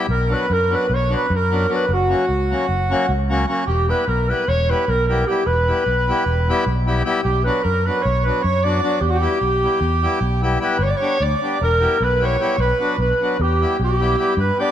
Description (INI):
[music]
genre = balkan folk, Balkan wedding band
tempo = 303 BPM (eighths)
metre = 9/8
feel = straight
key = E dorian sharp4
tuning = A4 = 436 Hz
[part]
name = accordion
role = accompaniment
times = 0.0-14.7 s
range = F#3 to G4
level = -24 LUFS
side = left 3 dB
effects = none
[part]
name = mellow clarinet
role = melody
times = 0.1-14.7 s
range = F#4 to D5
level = -21 LUFS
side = equal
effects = none
[part]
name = accordion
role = second line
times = 0.1-14.7 s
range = F#4 to D5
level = -25 LUFS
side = right 3 dB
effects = none
[part]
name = fingered electric bass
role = bass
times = 0.1-14.5 s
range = E1 to G2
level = -21 LUFS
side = equal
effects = none
[sound]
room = moderate scoring stage reverb, RT60 1.8 s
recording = none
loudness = -16 LUFS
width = side -10 dB against mid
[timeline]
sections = 0.0-10.8 A section; 10.8-14.7 B section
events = none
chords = 0.1 Bm; 1.9 F#; 3.7 Em; 7.2 Bm; 9.0 Em; 10.8 G; 11.6 Em; 12.6 Bm; 13.4 Em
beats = | 0.09 0.29 0.49 0.69 0.89 1.09 1.29 1.48 1.68 | 1.88 2.08 2.28 2.48 2.68 2.88 3.07 3.27 3.47 | 3.67 3.87 4.07 4.26 4.46 4.66 4.86 5.06 5.26 | 5.46 5.66 5.85 6.05 6.25 6.45 6.65 6.84 7.04 | 7.24 7.44 7.64 7.84 8.04 8.23 8.43 8.63 8.83 | 9.03 9.22 9.42 9.62 9.82 10.02 10.21 10.41 10.61 | 10.81 11.01 11.21 11.40 11.60 11.80 12.00 12.20 12.39 | 12.59 12.79 12.99 13.19 13.39 13.58 13.78 13.98 14.18 | 14.38 14.57